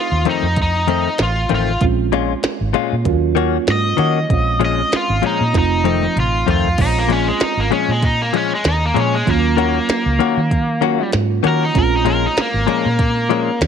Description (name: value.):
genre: straight-eighth soul blues.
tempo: 97 BPM.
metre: 4/4.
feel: swing 55% on 16ths.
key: Bb minor.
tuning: A4 = 442 Hz.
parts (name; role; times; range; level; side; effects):
cranked stack guitar; melody; 0.0-13.6 s; Ab3 to Eb5; -19 LUFS; left 1 dB; overdrive.
reed electric piano; accompaniment; 0.0-13.7 s; Gb3 to F4; -24 LUFS; right 18 dB; phaser.
vintage muted fingered electric bass; bass; 0.1-13.7 s; F1 to Eb3; -20 LUFS; right 1 dB; none.
direct-recorded clean electric guitar; stabs; 0.3-13.5 s; F2 to Gb4; -20 LUFS; left 14 dB; none.
minimal click drum kit; drums; 0.3-13.7 s; crash cymbal, hi-hat, kick drum, snare drum, toms; -21 LUFS; right 1 dB; none.
room: light reverb, digital ambience.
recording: 1960s-style stereo with parts hard left and right.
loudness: -14 LUFS.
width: side -7 dB against mid.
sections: 0.0-6.8 A section; 6.8-13.7 B section.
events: drum fill 5.5-6.8; overdriven electric guitar solo 6.8-13.7.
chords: 0.0 F7; 1.8 Bbm7; 3.1 Ebm7; 4.3 Bbm7; 5.5 F7; 6.8 Bbm7; 9.3 Ebm7; 11.7 Bbm7.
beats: 0.57 1.19 | 1.82 2.44 3.06 3.68 | 4.30 4.92 5.54 6.17 | 6.79 7.41 8.03 8.65 | 9.27 9.89 10.51 11.13 | 11.75 12.37 12.99 13.61.